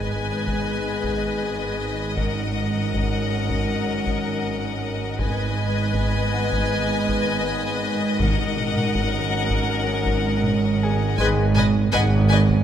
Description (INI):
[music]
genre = cinematic, suspense film score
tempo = 80 BPM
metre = 4/4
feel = straight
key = G# minor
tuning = A4 = 440 Hz
[part]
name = rich chamber violin section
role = melody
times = 0.0-12.4 s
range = F#5 to G#5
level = -30 LUFS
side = left 4 dB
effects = none
[part]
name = clear studio violin section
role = second line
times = 0.0-12.4 s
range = D#5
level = -31 LUFS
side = left 6 dB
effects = none
[part]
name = rich chamber viola section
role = accompaniment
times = 0.0-12.4 s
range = A#4 to B4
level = -31 LUFS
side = left 5 dB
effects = none
[part]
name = clear trombone section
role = sustained chords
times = 0.0-11.4 s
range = D#3 to G#3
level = -33 LUFS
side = right 2 dB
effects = none
[part]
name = dark French horn section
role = sustained chords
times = 0.0-11.5 s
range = B3 to B4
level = -30 LUFS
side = left 3 dB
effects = none
[part]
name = clear chamber double bass section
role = bass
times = 0.0-12.6 s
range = G#1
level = -26 LUFS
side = right 3 dB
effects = none
[part]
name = rich studio cello section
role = bass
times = 0.0-12.6 s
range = G#2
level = -25 LUFS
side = right 2 dB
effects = none
[part]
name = impact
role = sound effects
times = 0.2-2.2 s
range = none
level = barely audible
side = none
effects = none
[part]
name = warm baby grand piano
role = texture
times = 0.0-12.6 s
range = G#4 to A#5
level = -34 LUFS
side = left 2 dB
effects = none
[part]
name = taiko ensemble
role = drums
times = 0.5-12.6 s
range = none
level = -28 LUFS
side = left 1 dB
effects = none
[part]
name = timpani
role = percussion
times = 8.2-9.3 s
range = G#2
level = -31 LUFS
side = equal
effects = none
[sound]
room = moderate scoring stage reverb, RT60 2.0 s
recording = none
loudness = -20 LUFS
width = side -9 dB against mid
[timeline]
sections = 0.0-12.6 A section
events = impact 0.0-2.2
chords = 0.0 G#m; 2.2 F#6/G#; 5.2 G#m; 8.2 F#6/G#; 11.2 G#m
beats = 0.66 1.42 | 2.17 2.93 3.68 4.44 | 5.19 5.95 6.71 7.46 | 8.20 8.94 9.69 10.44 | 11.19 11.93